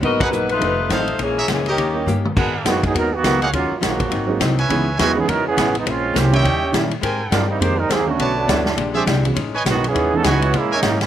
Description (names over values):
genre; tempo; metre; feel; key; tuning
jazz, big band swing; 206 BPM; 4/4; swing 60% on 8ths; G# minor; A4 = 441 Hz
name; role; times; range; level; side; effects
mellow saxophone section; melody; 0.0-2.2 s; D#3 to D#5; -20 LUFS; left 3 dB; none
archtop guitar, miked and amplified; accompaniment; 0.0-11.0 s; F2 to C#5; -25 LUFS; left 6 dB; none
warm baby grand piano; accompaniment; 0.0-10.2 s; D3 to G4; -25 LUFS; right 5 dB; none
upright bass; bass; 0.0-11.1 s; F1 to A#2; -23 LUFS; equal; none
swinging big-band drum kit; drums; 0.0-11.1 s; crash cymbal, hi-hat, kick drum, ride cymbal, snare drum, toms; -23 LUFS; equal; none
bright trumpet section; stabs; 0.2-10.8 s; G4 to A5; -23 LUFS; right 2 dB; none
bright trombone section; second line; 2.7-11.1 s; C#3 to B#4; -20 LUFS; right 4 dB; none
room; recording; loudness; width
little or no reverb; none; -16 LUFS; side -10 dB against mid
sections
0.0-2.4 A section; 2.4-11.1 B section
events
band accent 0.2; drum fill 2.1; trombone section solo 2.4-11.1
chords
0.0 G#m9; 0.6 F7; 1.2 A#m7b5; 1.8 D#7; 2.4 G#m9; 3.5 D#m11; 4.1 G#7; 4.7 C#m7; 5.9 A#m9; 6.4 D#7b9; 7.0 G#maj9; 8.2 Bm9; 8.8 A#13; 9.4 Amaj9#11; 10.5 A#m7b5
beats
| 0.02 0.32 0.61 0.90 | 1.19 1.49 1.78 2.07 | 2.36 2.65 2.94 3.24 | 3.53 3.82 4.11 4.41 | 4.70 4.99 5.28 5.57 | 5.86 6.16 6.45 6.74 | 7.03 7.32 7.61 7.91 | 8.20 8.49 8.78 9.07 | 9.36 9.66 9.95 10.24 | 10.53 10.82